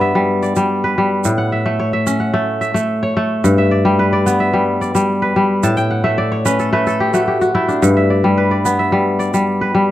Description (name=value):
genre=west african traditional, West African string and xylophone music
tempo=109 BPM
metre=4/4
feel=straight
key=G lydian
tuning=A4 = 440 Hz
part: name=kora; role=arpeggios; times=0.0-9.9 s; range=G2 to A5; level=-13 LUFS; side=left 1 dB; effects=none
part: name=egg shaker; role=percussion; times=0.4-9.5 s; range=none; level=-28 LUFS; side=right 23 dB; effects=none
room=small room ambience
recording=dry, close 1970s-style studio recording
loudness=-13 LUFS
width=side -13 dB against mid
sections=0.0-9.9 A section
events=kora fill 5.6-7.8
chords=0.0 G; 1.2 A; 3.4 G; 5.6 A; 7.8 G